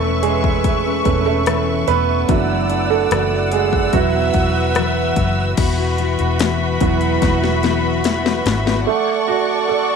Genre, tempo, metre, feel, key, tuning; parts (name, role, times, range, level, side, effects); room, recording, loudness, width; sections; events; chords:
pop ballad; 73 BPM; 4/4; straight; A4 = 441 Hz
clear upright piano; accompaniment; 0.0-10.0 s; E3 to C#5; -20 LUFS; right 14 dB
rich studio string section; sustained chords; 0.0-10.0 s; F#4 to E6; -21 LUFS; equal
fingerpicked steel-string acoustic guitar; arpeggios; 0.0-8.9 s; F#2 to B4; -24 LUFS; left 14 dB
vintage muted fingered electric bass; bass; 0.0-8.8 s; E1 to G#1; -21 LUFS; left 1 dB
house drum kit; drums; 0.2-8.9 s; crash cymbal, hi-hat, kick drum, rim click, snare drum; -21 LUFS; left 4 dB
light reverb, studio reverb; 1960s-style stereo with parts hard left and right; -15 LUFS; side -6 dB against mid
0.0-5.6 A section; 5.6-8.9 B section; 8.9-10.0 C section
upright piano solo 0.0-5.6, 5.6-8.9; drum fill 7.2-8.9
0.0 Aadd9/E; 2.3 Dadd9/F#; 3.9 Esus2; 8.9 Dmaj7/A